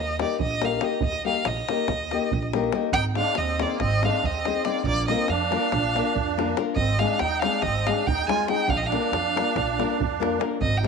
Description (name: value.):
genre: balkan folk, Balkan wedding band.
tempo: 281 BPM (eighths).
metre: 9/8.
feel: straight.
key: unclear.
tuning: A4 = 439 Hz.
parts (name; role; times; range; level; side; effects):
rich violin; melody; 0.0-10.9 s; D5 to Ab5; -27 LUFS; right 1 dB; none.
upright bass; bass; 0.0-10.9 s; Ab1 to F2; -29 LUFS; right 2 dB; none.
nylon-string guitar; accompaniment; 0.2-10.9 s; Ab3 to C5; -27 LUFS; left 8 dB; none.
davul; percussion; 0.2-10.9 s; none; -30 LUFS; equal; none.
musette accordion; second line; 2.9-10.8 s; Bb3 to F4; -29 LUFS; right 13 dB; none.
room: moderate echo chamber reverb, RT60 2.3 s.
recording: 1960s-style stereo with parts hard left and right.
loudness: -22 LUFS.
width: side -5 dB against mid.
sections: 0.0-2.9 A section; 2.9-10.9 B section.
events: none.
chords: 0.0 Eb; 2.9 Ab; 4.9 Bb; 6.8 Ab; 8.7 Bb.